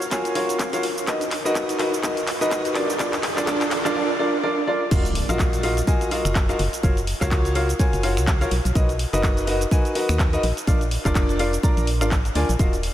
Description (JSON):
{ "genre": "piano house", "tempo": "125 BPM", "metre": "4/4", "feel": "swing 57% on 16ths", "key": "unclear", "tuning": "A4 = 440 Hz", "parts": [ { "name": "house drum kit", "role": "drums", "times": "0.0-12.9 s", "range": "crash cymbal, finger snaps, handclaps, hi-hat, shaker", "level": "-28 LUFS", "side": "equal", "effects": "high-pass filter on snare, high-pass filter on hats, high-pass filter on perc, high-pass filter on cymbals" }, { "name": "riser and impact", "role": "sound effects", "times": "0.0-6.8 s", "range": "none", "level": "-32 LUFS", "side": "equal", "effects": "none" }, { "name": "bright grand piano", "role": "riff", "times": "0.1-12.7 s", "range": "D4 to Bb5", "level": "-23 LUFS", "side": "equal", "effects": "sidechain pumping, low-pass filter, tape echo" }, { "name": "electronic kick drum", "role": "drums", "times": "0.1-12.7 s", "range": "none", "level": "-21 LUFS", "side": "equal", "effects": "high-pass filter on kick" }, { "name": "organ-like FM bass", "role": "bass", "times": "4.9-12.9 s", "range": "Eb1 to D#2", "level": "-24 LUFS", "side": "equal", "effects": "sidechain pumping" } ], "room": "moderate huge ambient reverb, RT60 4.8 s", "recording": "dreamy mix soaked in reverb", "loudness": "-19 LUFS", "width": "side -12 dB against mid", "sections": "0.0-4.9 A section; 4.9-12.9 B section", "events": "build-up 0.0-4.9; drum fill 0.0-4.0; riser 0.0-4.0; drop 4.9-12.9; impact 4.9-6.8", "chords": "0.0 Gbmaj7; 0.8 Bmaj7; 2.8 Bb; 4.9 Ebmadd9; 6.6 Gbmaj7; 8.5 Bmaj7; 10.4 Bb", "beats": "0.11 0.59 | 1.07 1.55 2.03 2.51 | 2.99 3.47 3.95 4.43 | 4.91 5.39 5.87 6.35 | 6.83 7.31 7.79 8.27 | 8.75 9.23 9.71 10.19 | 10.67 11.15 11.63 12.11 | 12.59" }